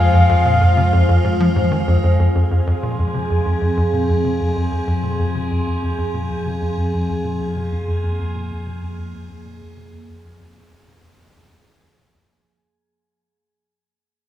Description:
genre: ambient, sequencer-driven space music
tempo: 95 BPM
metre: 4/4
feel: straight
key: F minor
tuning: A4 = 443 Hz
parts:
  - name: breathy flute-like synth lead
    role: melody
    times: 0.0-1.6 s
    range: F5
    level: -20 LUFS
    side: left 2 dB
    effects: chorus, tape echo
  - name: evolving wavetable pad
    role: sustained chords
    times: 0.0-12.3 s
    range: F3 to C5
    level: -23 LUFS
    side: equal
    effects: phaser, built-in reverb
  - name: tight sequencer bass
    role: riff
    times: 0.0-12.2 s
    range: F2 to F3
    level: -19 LUFS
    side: equal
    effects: tape echo
  - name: analog drone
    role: bass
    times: 0.0-12.3 s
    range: F2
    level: -23 LUFS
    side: left 1 dB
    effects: chorus
  - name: wind-like tuned noise texture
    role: texture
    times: 0.0-12.3 s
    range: F5 to Ab5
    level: -33 LUFS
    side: right 1 dB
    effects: built-in reverb
room: wet spring reverb, RT60 2.7 s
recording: echo-heavy mix, small room ambience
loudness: -16 LUFS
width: side -12 dB against mid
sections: 0.0-2.2 A section; 2.2-12.3 B section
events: fade-out 2.2-12.3; filter sweep on analog synth bass 2.2-12.3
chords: 0.0 Fm

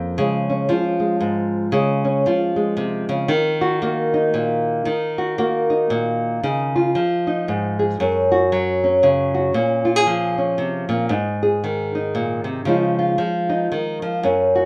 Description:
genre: folk, solo fingerstyle acoustic guitar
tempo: 115 BPM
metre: 3/4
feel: swing 60% on 8ths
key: Db major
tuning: A4 = 440 Hz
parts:
  - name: nylon-string guitar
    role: solo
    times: 0.0-14.7 s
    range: F2 to Ab4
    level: -20 LUFS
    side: equal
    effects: none
room: light reverb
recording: none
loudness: -20 LUFS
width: mono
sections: 0.0-6.4 A section; 6.4-14.7 B section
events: none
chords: 0.2 Db; 3.3 Ebm; 6.4 Dbadd9; 8.0 Gb5; 9.5 Bbm; 11.1 Ab; 12.7 Dbadd9

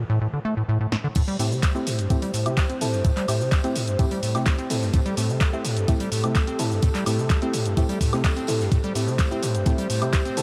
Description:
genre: acid house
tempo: 127 BPM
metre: 4/4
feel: straight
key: A minor pentatonic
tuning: A4 = 438 Hz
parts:
  - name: acid bass, square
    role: riff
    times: 0.0-10.4 s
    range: G2 to C4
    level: -28 LUFS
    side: equal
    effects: tube saturation, tape echo
  - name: punchy analog drum machine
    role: drums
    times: 0.9-10.4 s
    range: crash cymbal, handclaps, hi-hat, shaker, snare drum, woodblock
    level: -33 LUFS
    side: equal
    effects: small room ambience
  - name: loose indie drum kit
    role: drums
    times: 1.1-10.4 s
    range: hi-hat, snare drum, tambourine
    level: -43 LUFS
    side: equal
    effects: none
  - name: dark analog pad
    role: sustained chords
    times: 1.2-10.4 s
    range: A3 to C5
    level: -33 LUFS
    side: equal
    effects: chorus, sidechain pumping
  - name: electronic kick drum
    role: drums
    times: 1.2-10.2 s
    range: none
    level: -24 LUFS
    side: equal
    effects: overdrive, small room ambience
  - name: deep mellow chord stab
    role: stabs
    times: 1.4-10.4 s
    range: A3 to A4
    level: -32 LUFS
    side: equal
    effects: chorus, tape echo
room: light reverb, studio reverb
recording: none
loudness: -23 LUFS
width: mono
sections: 0.0-1.2 A section; 1.2-10.4 B section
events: break 0.0-1.2; filter sweep on acid bass 0.0-1.2; drum fill 0.9; drop 1.2-10.4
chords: 0.0 N.C.; 1.2 Am7

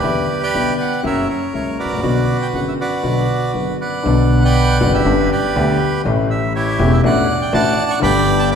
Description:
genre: tango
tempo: 121 BPM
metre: 4/4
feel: rubato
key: B minor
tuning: A4 = 440 Hz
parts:
  - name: bandoneon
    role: melody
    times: 0.0-8.6 s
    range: E4 to C#6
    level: -19 LUFS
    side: right 3 dB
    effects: none
  - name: dark grand piano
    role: accompaniment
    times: 0.0-8.6 s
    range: E1 to G4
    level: -17 LUFS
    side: left 3 dB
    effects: none
  - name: upright bass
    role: bass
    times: 0.0-8.6 s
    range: E1 to E2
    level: -21 LUFS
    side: right 1 dB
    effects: none
room: wet scoring stage reverb, RT60 1.6 s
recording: recorded in a church or concert hall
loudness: -14 LUFS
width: side -7 dB against mid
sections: 0.0-4.1 A section; 4.1-8.6 B section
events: none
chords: 0.1 Em7; 1.0 F#7; 2.0 Bm; 5.1 G; 6.1 A7; 7.0 Dadd9/A; 8.0 G

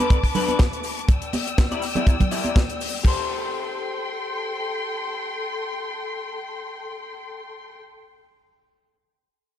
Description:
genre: nu-disco, nu disco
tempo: 122 BPM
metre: 4/4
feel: swing 55% on 16ths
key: A minor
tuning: A4 = 440 Hz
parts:
  - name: dark symphonic string section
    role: sustained chords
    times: 0.0-7.7 s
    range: A4 to E6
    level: -29 LUFS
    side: left 3 dB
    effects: sidechain pumping
  - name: electric guitar through a small old amp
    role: riff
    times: 0.0-7.9 s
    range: D4 to D5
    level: -29 LUFS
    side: left 4 dB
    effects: ensemble chorus, low-pass filter, tape echo
  - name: tight funk drum kit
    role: drums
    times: 0.0-3.2 s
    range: crash cymbal, hi-hat, snare drum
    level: -30 LUFS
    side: left 2 dB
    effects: none
  - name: congas and cabasa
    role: percussion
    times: 0.0-3.0 s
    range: none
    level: -29 LUFS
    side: right 3 dB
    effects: none
  - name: kick drum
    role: drums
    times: 0.1-3.2 s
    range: none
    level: -18 LUFS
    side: equal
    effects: none
room: light reverb, small room ambience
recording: dark, warm production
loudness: -22 LUFS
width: side -11 dB against mid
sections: 0.0-3.1 A section; 3.1-7.0 B section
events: none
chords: 0.0 Bm7; 1.1 Em7; 3.1 Am7

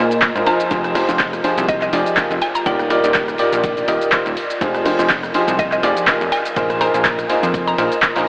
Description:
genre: piano house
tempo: 123 BPM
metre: 4/4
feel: swing 55% on 16ths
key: F dorian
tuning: A4 = 441 Hz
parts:
  - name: mallet-like synth pluck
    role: melody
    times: 0.0-7.9 s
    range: Eb5 to Bb5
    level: -24 LUFS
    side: equal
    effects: none
  - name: bright upright piano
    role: riff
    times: 0.0-8.3 s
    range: Eb3 to Eb5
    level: -18 LUFS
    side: equal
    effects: sidechain pumping, diffuse ambient delay
  - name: plucky analog bass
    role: bass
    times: 0.0-8.2 s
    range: Eb1 to Bb2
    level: -23 LUFS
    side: equal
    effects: sidechain pumping
  - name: warbly tape-like pad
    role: texture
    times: 0.0-8.3 s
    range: F4 to Eb5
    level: -26 LUFS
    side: equal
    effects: none
  - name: punchy analog drum machine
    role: drums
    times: 0.1-8.3 s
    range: handclaps, hi-hat, rim click, shaker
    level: -20 LUFS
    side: equal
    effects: overdrive
  - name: electronic kick drum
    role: drums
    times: 0.2-8.1 s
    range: none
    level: -28 LUFS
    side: equal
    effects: none
  - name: loose indie drum kit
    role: drums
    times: 0.2-8.3 s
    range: hi-hat, ride cymbal, snare drum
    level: -30 LUFS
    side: equal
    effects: none
room: wet huge ambient reverb, RT60 7.7 s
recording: dreamy mix soaked in reverb, AM radio sound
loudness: -14 LUFS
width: side -31 dB against mid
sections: 0.0-8.3 A section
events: none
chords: 0.0 Bb9sus4; 0.7 Fm9; 2.7 Ebmaj9; 4.6 Fm9; 6.3 Bb9sus4

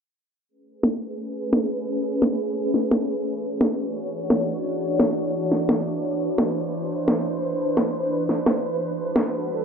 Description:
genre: liquid drum and bass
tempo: 173 BPM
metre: 4/4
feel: swing 54% on 16ths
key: A major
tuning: A4 = 444 Hz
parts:
  - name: ethereal airy pad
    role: sustained chords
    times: 1.0-9.6 s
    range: E3 to C#5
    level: -24 LUFS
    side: equal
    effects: ensemble chorus, built-in reverb
  - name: electronic snare drum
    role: drums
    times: 0.8-9.2 s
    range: none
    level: -22 LUFS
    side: equal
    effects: none
room: moderate plate reverb, RT60 2.4 s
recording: low-pass filter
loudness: -21 LUFS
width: side -6 dB against mid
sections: 0.5-9.6 A section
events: filter sweep on ambient pad 0.5-9.6; filter sweep 0.5-9.6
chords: 0.5 Amaj9; 3.3 Dmaj9; 5.9 Cmaj9; 8.8 Gmaj9

